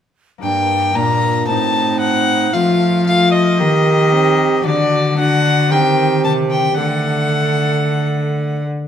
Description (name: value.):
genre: classical, renaissance-style consort dance.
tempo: 113 BPM.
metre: 4/4.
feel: straight.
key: G minor.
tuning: A4 = 443 Hz.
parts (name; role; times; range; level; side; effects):
warm violin; melody; 0.4-8.6 s; D5 to Bb5; -17 LUFS; left 4 dB; none.
tenor recorder; second line; 0.4-8.6 s; D4 to A4; -20 LUFS; right 4 dB; none.
concert harp; accompaniment; 0.4-8.9 s; G2 to D5; -21 LUFS; left 4 dB; none.
warm trombone; accompaniment; 0.4-8.6 s; A3 to D4; -24 LUFS; equal; none.
rich cello; bass; 0.4-8.7 s; G2 to F3; -19 LUFS; right 1 dB; none.
room: wet stone room reverb, RT60 1.2 s.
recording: heard from further back in the room.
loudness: -13 LUFS.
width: side -9 dB against mid.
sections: 0.4-8.9 A section.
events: none.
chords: 0.4 Gm; 1.5 Adim; 2.5 F; 3.6 Eb; 4.7 D; 5.7 Cm/Eb; 6.8 D.